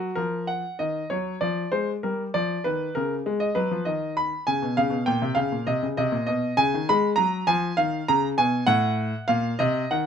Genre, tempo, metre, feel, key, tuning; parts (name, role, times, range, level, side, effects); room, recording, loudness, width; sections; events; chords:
classical-period piano sonatina; 98 BPM; 3/4; rubato; Eb minor; A4 = 440 Hz
clear grand piano; solo; 0.0-10.1 s; A2 to Cb6; -22 LUFS; equal
light reverb; close, detailed microphones; -22 LUFS; side -7 dB against mid
0.0-10.1 A section
0.0 Ebm; 1.4 Fm69; 2.6 Eb5; 3.3 Abm; 5.1 Bbm69; 6.3 Abm/Cb; 6.9 Fdim; 8.7 Adim7